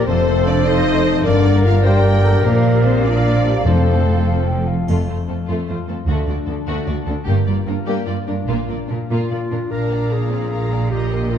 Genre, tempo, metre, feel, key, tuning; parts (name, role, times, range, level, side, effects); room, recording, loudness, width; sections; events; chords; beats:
cinematic, heroic adventure film score; 100 BPM (dotted quarters); 6/8; straight; F mixolydian; A4 = 438 Hz
rich symphonic violin section; melody; 0.0-11.4 s; F4 to Bb5; -31 LUFS; left 4 dB
mellow clarinet; second line; 0.0-4.7, 9.1-11.4 s; F4 to C5; -25 LUFS; equal
mellow hollow silver concert flute; second line; 0.0-4.9 s; C5 to G5; -28 LUFS; left 1 dB
warm symphonic violin section; second line; 0.0-11.4 s; A3 to Bb5; -27 LUFS; left 2 dB
dark symphonic viola section; accompaniment; 0.0-11.4 s; Ab3 to C5; -27 LUFS; equal
clear trombone section; sustained chords; 0.0-4.7 s; D3 to C4; -26 LUFS; right 3 dB
mellow French horn section; sustained chords; 0.0-4.7 s; A3 to G4; -22 LUFS; left 5 dB
concert harp; arpeggios; 0.0-11.4 s; F2 to F#5; -23 LUFS; left 9 dB
clear trumpet section; stabs; 0.0-4.7 s; C5 to D5; -25 LUFS; right 6 dB
bright symphonic cello section; bass; 0.1-11.4 s; D2 to Bb2; -22 LUFS; right 2 dB
warm symphonic double bass section; bass; 0.1-11.4 s; F1 to D2; -20 LUFS; right 3 dB
timpani; percussion; 3.7-4.2 s; F2; -22 LUFS; equal
triangle; percussion; 4.9-5.6 s; -49 LUFS; right 1 dB
moderate scoring stage reverb, RT60 1.5 s; dark, warm production; -15 LUFS; side -8 dB against mid
0.0-4.9 A section; 4.9-9.7 B section; 9.7-11.4 C section
0.1 F; 1.3 Gm; 2.4 Bb; 3.7 F; 6.1 D; 7.3 Gm7; 8.5 Bb
| 0.07 0.67 | 1.26 1.85 | 2.45 3.05 | 3.66 4.27 | 4.89 5.49 | 6.08 6.68 | 7.27 7.87 | 8.49 9.10 | 9.72 10.32 | 10.92